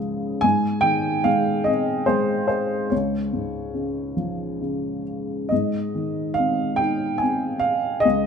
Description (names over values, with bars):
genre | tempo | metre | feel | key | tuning
classical, lyrical solo piano | 71 BPM | 3/4 | uneven beats, rubato | Ab major | A4 = 441 Hz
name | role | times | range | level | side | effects
dark upright piano | solo | 0.0-8.3 s | Db2 to Ab5 | -20 LUFS | equal | none
room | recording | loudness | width
moderate recital hall reverb, RT60 1.8 s | close, detailed microphones | -20 LUFS | side -6 dB against mid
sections
0.0-8.3 A section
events
none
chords
0.4 Ab; 2.9 Db; 5.5 Ab